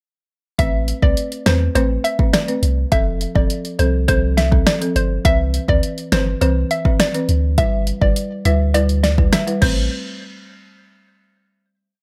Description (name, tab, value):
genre	dancehall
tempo	103 BPM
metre	4/4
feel	straight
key	A minor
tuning	A4 = 442 Hz
part	hollow square pluck	melody	0.6-9.9 s	C5 to E5	-25 LUFS	equal	chorus
part	folk marimba with medium mallets	accompaniment	0.6-9.8 s	E3 to B4	-26 LUFS	equal	sidechain pumping
part	punchy sub bass	bass	0.6-9.9 s	F1 to E2	-21 LUFS	equal	none
part	deep house drum kit	drums	0.6-9.8 s	crash cymbal, hi-hat, kick drum, rim click, snare drum	-20 LUFS	equal	none
room	digital ambience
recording	none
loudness	-18 LUFS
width	mono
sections	0.6-9.9 chorus; 9.9-12.0 final hit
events	none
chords	0.6 Amadd9; 2.9 F; 5.2 Cmaj7; 7.6 G6; 9.6 Amadd9; 9.9 N.C.